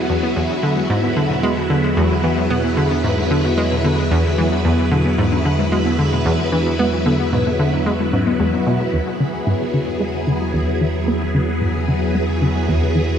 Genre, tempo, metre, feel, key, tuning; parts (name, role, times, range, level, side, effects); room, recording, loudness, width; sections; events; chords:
ambient, sequencer-driven space music; 112 BPM; 4/4; straight; A4 = 438 Hz
phased string machine; sustained chords; 0.0-13.2 s; F#3 to B4; -20 LUFS; equal; ensemble chorus, phaser
soft round pluck; arpeggios; 0.0-8.7 s; B2 to F#4; -25 LUFS; moving between left 5 dB and right 3 dB; chorus, auto-pan, ping-pong delay
warm sub bass; bass; 0.0-13.2 s; E2; -24 LUFS; equal
pulsing gated texture; texture; 0.0-9.0 s; F#4 to F#5; -30 LUFS; right 4 dB; chorus, built-in reverb
hollow square pluck; riff; 0.1-13.0 s; E2 to B3; -20 LUFS; equal; chorus, ping-pong delay
wet huge ambient reverb, RT60 7.7 s; cassette tape; -16 LUFS; side -8 dB against mid
0.0-8.9 A section; 8.9-13.2 B section
filter sweep on synth arpeggio sound 8.9-13.2
0.0 Eadd9